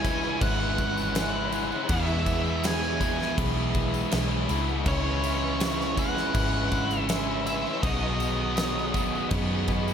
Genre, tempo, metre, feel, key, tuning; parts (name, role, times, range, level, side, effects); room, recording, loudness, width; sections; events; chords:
rock, shoegaze and dream pop; 81 BPM; 4/4; straight; A4 = 438 Hz
octave-fuzz lead guitar; melody; 0.0-9.3 s; C#5 to G#5; -32 LUFS; left 1 dB; distortion, slapback echo
ensemble organ-string; sustained chords; 0.0-9.9 s; G#4 to D#6; -38 LUFS; equal; ensemble chorus
biting overdriven guitar; riff; 0.0-9.9 s; E2 to F#4; -32 LUFS; left 10 dB; wide subtle chorus
biting overdriven guitar; riff; 0.0-9.9 s; B2 to E4; -32 LUFS; right 10 dB; reverse reverb
tight distorted guitar; riff; 0.0-9.9 s; E2 to C#4; -35 LUFS; equal; distortion
vintage muted picked electric bass; bass; 0.0-9.9 s; G#1 to F#2; -31 LUFS; equal
huge arena drum kit; drums; 0.0-9.9 s; crash cymbal, kick drum, snare drum; -30 LUFS; equal
tambourine; percussion; 0.0-9.9 s; -46 LUFS; right 10 dB
light reverb, small room ambience; -24 LUFS; side -8 dB against mid
0.0-9.9 A section
0.0 C#m7; 1.9 Emaj7; 4.9 C#m7; 7.8 B6